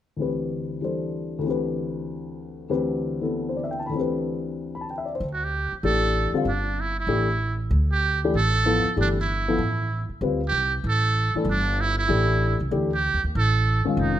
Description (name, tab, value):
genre	modal jazz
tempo	192 BPM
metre	4/4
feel	swing 64% on 8ths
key	unclear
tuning	A4 = 439 Hz
part	dark baby grand piano	accompaniment	0.2-14.2 s	D2 to B5	-26 LUFS	left 3 dB	none
part	upright bass	bass	5.2-14.2 s	F1 to E2	-24 LUFS	right 1 dB	none
part	trumpet with metal mute	melody	5.3-14.2 s	D4 to A4	-25 LUFS	right 4 dB	none
room	light reverb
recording	close, detailed microphones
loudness	-22 LUFS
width	side -11 dB against mid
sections	0.2-5.2 A section; 5.2-14.2 B section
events	none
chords	0.2 D13sus4; 5.2 Dsus4